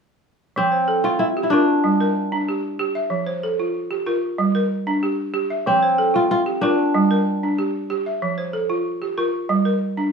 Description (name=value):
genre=west african traditional, West African string and xylophone music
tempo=94 BPM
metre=4/4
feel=straight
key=F major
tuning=A4 = 440 Hz
part: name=kora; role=melody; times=0.6-8.3 s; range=C4 to F4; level=-19 LUFS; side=left 1 dB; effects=none
part: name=balafon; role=arpeggios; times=0.6-10.1 s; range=F3 to E5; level=-20 LUFS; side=right 2 dB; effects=none
room=wet studio reverb, RT60 0.6 s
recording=rough home demo mix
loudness=-18 LUFS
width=side -5 dB against mid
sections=0.6-10.1 A section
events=none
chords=0.6 F; 1.8 Gm; 3.1 F; 4.4 Gm; 5.7 F; 6.9 Gm; 8.2 F; 9.5 Gm